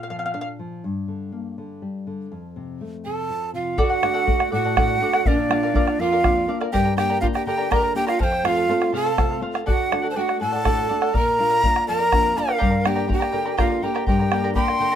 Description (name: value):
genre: andean folk, Andean ensemble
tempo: 82 BPM (dotted quarters)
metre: 6/8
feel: straight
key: unclear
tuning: A4 = 440 Hz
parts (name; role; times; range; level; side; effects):
- charango; accompaniment; 0.0-0.5, 3.8-15.0 s; G4 to Bb5; -27 LUFS; left 1 dB; none
- nylon-string guitar; accompaniment; 0.0-15.0 s; F2 to G4; -27 LUFS; left 3 dB; none
- breathy bright large quena; melody; 3.0-15.0 s; D5 to C6; -23 LUFS; equal; none
- breathy bright pan flute; second line; 3.1-15.0 s; D4 to G5; -25 LUFS; right 4 dB; none
- bombo; percussion; 3.8-14.8 s; none; -23 LUFS; equal; none
room: light reverb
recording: minimal, uncompressed stereo recording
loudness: -18 LUFS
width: side -9 dB against mid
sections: 0.0-3.8 A section; 3.8-15.0 B section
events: charango solo 0.0-3.8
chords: 0.0 Bb; 0.8 Gm; 2.3 F; 3.8 D; 5.3 Bb; 6.7 Gm; 8.2 F; 9.7 D; 11.1 Bb; 12.6 Gm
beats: 0.09 | 0.83 1.57 | 2.31 3.05 | 3.79 4.53 | 5.26 6.00 | 6.74 7.47 | 8.20 8.94 | 9.67 10.41 | 11.14 11.87 | 12.61 13.34 | 14.07 14.80